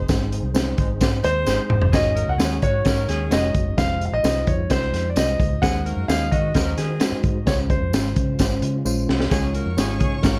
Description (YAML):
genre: uptempo 1960s-style soul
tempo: 130 BPM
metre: 4/4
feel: straight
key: Ab mixolydian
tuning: A4 = 437 Hz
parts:
  - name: bright saxophone section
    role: second line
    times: 0.0-10.4 s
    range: Eb3 to C5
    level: -34 LUFS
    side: equal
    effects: none
  - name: barky reed electric piano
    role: accompaniment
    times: 0.0-10.4 s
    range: G3 to Eb5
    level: -31 LUFS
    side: equal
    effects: overdrive
  - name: percussive tonewheel organ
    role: sustained chords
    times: 0.0-10.4 s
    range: Ab3 to C5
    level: -37 LUFS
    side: equal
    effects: none
  - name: vintage muted fingered electric bass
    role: bass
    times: 0.0-10.4 s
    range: F1 to Eb3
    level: -27 LUFS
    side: equal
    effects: none
  - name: crunchy breakbeat drum kit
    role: drums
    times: 0.1-10.3 s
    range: hi-hat, kick drum, snare drum, toms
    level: -24 LUFS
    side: equal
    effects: none
  - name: tambourine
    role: percussion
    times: 0.1-10.3 s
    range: none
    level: -38 LUFS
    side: equal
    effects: none
  - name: clear grand piano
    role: melody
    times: 1.2-8.6 s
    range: C5 to Gb5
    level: -27 LUFS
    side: equal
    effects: none
  - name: warm studio string section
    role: second line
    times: 9.3-10.4 s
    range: Db5 to Db6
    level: -36 LUFS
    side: equal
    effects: none
room: light reverb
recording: dark, warm production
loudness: -21 LUFS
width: mono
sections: 0.0-1.9 A section; 1.9-10.4 B section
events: drum fill 1.5-1.9, 8.9-9.3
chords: 0.0 Ab; 1.9 Ab7sus4; 3.8 Fm7; 5.6 Ab7/Eb; 7.5 Dbmaj7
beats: | 0.09 0.55 1.01 1.47 | 1.93 2.40 2.86 3.32 | 3.78 4.24 4.70 5.16 | 5.62 6.09 6.55 7.01 | 7.47 7.93 8.39 8.85 | 9.31 9.78 10.24